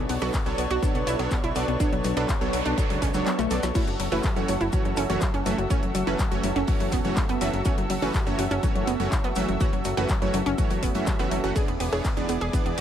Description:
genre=progressive house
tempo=123 BPM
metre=4/4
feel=straight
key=F# minor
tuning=A4 = 444 Hz
part: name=lush unison pad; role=sustained chords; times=0.0-12.8 s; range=E3 to E5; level=-32 LUFS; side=equal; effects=chorus, sidechain pumping
part: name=analog pluck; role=arpeggios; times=0.0-12.8 s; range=F#3 to G#4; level=-29 LUFS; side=equal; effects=chorus, sidechain pumping, tape echo
part: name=fat analog bass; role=bass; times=0.0-12.8 s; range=E1 to C#2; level=-30 LUFS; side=left 1 dB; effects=sidechain pumping
part: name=deep house drum kit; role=drums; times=0.1-12.8 s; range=crash cymbal, handclaps, hi-hat, ride cymbal, snare drum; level=-35 LUFS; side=left 1 dB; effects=none
part: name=warm soul drum kit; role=drums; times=0.1-12.8 s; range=hi-hat, shaker, snare drum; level=-42 LUFS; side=equal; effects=sidechain pumping on hats, high-pass filter on hats, high-pass filter on snare, sidechain pumping on perc, high-pass filter on perc, high-pass filter on room
part: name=supersaw stab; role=stabs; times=0.2-12.8 s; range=E3 to F#5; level=-29 LUFS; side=right 3 dB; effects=sidechain pumping, tape echo
part: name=electronic kick drum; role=drums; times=0.3-12.6 s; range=none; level=-26 LUFS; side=left 1 dB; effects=none
part: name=noise sweep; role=sound effects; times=2.3-3.8 s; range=none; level=-40 LUFS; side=right 4 dB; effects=none
room=digital ambience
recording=none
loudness=-22 LUFS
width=side -10 dB against mid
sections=0.0-12.8 A section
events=noise sweep 2.3-3.8; kick drops out 3.3-3.8; drum fill 3.4-3.8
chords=0.0 Bm9; 3.8 F#m7; 11.6 E7

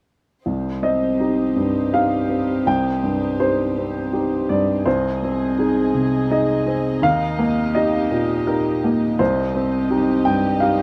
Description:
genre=neoclassical piano and strings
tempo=83 BPM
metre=3/4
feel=rubato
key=C minor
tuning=A4 = 440 Hz
part: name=warm upright piano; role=accompaniment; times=0.5-10.8 s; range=C2 to G5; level=-20 LUFS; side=equal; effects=none
part: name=warm chamber string section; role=sustained chords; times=0.5-10.8 s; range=Eb4 to Eb5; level=-34 LUFS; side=equal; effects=none
room=moderate studio reverb, RT60 0.7 s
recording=none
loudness=-20 LUFS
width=mono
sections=0.5-10.8 A section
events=none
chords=0.5 Cm; 4.9 Ab/C; 7.0 Ebadd9; 9.2 Cm

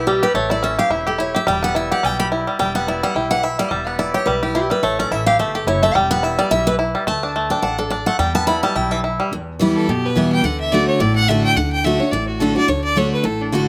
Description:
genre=bluegrass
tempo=214 BPM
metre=4/4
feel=swing 56% on 8ths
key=E dorian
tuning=A4 = 436 Hz
part: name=bluegrass banjo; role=melody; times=0.0-9.3 s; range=E3 to G4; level=-22 LUFS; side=equal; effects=slapback echo
part: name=picked steel-string acoustic guitar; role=accompaniment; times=0.0-13.7 s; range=E2 to B5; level=-21 LUFS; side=equal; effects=none
part: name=upright bass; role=bass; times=0.0-13.7 s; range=E1 to F#2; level=-29 LUFS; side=equal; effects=none
part: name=bright fiddle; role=melody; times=9.8-13.7 s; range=D4 to G5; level=-22 LUFS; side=equal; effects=none
room=little or no reverb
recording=recorded outdoors, with no room sound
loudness=-18 LUFS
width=mono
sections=0.4-9.3 A section; 9.3-13.7 B section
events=steel-string acoustic guitar solo 0.0-9.3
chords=0.4 A; 1.5 Em; 4.8 A; 6.0 Em; 7.1 D5; 8.2 Em; 10.4 D

